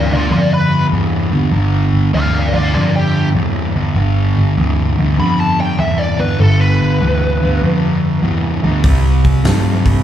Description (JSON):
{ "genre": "blues rock power trio and southern rock", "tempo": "98 BPM", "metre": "4/4", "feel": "swing 67% on 8ths", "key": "G mixolydian", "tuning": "A4 = 440 Hz", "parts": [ { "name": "biting lead guitar", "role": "melody", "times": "0.0-7.8 s", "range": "F4 to B5", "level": "-20 LUFS", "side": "left 1 dB", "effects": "wah, overdrive, slapback echo, analog delay" }, { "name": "fuzz guitar", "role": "riff", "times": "0.0-10.0 s", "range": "G2 to A3", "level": "-15 LUFS", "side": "equal", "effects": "distortion" }, { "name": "vintage muted picked electric bass", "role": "bass", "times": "0.0-10.0 s", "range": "G1 to G2", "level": "-16 LUFS", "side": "equal", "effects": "none" }, { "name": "huge arena drum kit", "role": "drums", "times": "8.8-10.0 s", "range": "hi-hat, kick drum, snare drum", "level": "-14 LUFS", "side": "equal", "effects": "none" } ], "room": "little or no reverb", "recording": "live gig heard through the venue's PA, club reverb", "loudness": "-12 LUFS", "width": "side -11 dB against mid", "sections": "0.0-10.0 A section", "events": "none", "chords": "0.0 G7; 8.8 C5" }